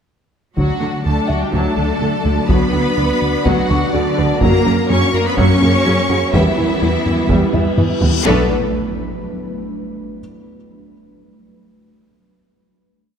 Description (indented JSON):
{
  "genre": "cinematic, hybrid orchestral and electronic film score",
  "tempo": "125 BPM",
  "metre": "4/4",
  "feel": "straight",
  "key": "B minor",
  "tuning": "A4 = 440 Hz",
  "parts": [
    { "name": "rich symphonic violin section", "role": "melody", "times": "0.6-8.5 s", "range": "B4 to C#6", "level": "-24 LUFS", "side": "left 2 dB", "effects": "none" },
    { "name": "warm symphonic violin section", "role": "second line", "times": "0.6-8.5 s", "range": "B3 to C#5", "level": "-24 LUFS", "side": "left 3 dB", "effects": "none" },
    { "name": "warm studio viola section", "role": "accompaniment", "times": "0.6-8.5 s", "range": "C#3 to D4", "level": "-22 LUFS", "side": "right 1 dB", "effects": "none" },
    { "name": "dark French horn section", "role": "sustained chords", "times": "0.6-8.5 s", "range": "A#3 to A4", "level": "-25 LUFS", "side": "left 4 dB", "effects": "none" },
    { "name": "glassy FM pad", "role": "sustained chords", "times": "0.6-8.5 s", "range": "F#3 to D5", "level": "-22 LUFS", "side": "left 1 dB", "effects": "ensemble chorus, built-in reverb" },
    { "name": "glassy wavetable pluck", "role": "arpeggios", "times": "0.6-8.2 s", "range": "D3 to B4", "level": "-25 LUFS", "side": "left 2 dB", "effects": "none" },
    { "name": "plucky analog bass", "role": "riff", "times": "0.6-8.2 s", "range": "D2 to F#3", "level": "-21 LUFS", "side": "right 1 dB", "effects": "none" },
    { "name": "dark symphonic double bass section", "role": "bass", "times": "0.6-8.5 s", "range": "B1 to F#2", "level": "-22 LUFS", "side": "right 3 dB", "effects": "none" },
    { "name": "rich symphonic cello section", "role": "bass", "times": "0.6-8.5 s", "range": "D3 to C#4", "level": "-23 LUFS", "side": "right 2 dB", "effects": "none" },
    { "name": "taiko ensemble", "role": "drums", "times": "0.6-8.2 s", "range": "none", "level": "-20 LUFS", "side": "equal", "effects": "none" },
    { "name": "felt-muted upright piano", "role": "texture", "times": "1.3-8.3 s", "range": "E4 to C#6", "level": "-30 LUFS", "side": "left 3 dB", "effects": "ping-pong delay" },
    { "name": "reverse cymbal and impact", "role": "sound effects", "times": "7.7-10.2 s", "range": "none", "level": "-27 LUFS", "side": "left 2 dB", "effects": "none" }
  ],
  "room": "moderate scoring stage reverb, RT60 2.0 s",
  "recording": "none",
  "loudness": "-13 LUFS",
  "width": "side -7 dB against mid",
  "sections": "0.6-8.3 theme; 8.3-10.2 final chord",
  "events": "drum fill 7.5-8.3; reverse cymbal 7.7-8.3; impact 8.3-10.2",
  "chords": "0.6 D; 2.5 Bm/D; 4.4 F#; 6.3 Em; 8.3 Bm7",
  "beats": "| 0.58 1.06 1.54 2.02 | 2.50 2.98 3.46 3.94 | 4.42 4.90 5.38 5.86 | 6.34 6.82 7.30 7.78 | 8.26 8.74 9.22 9.70"
}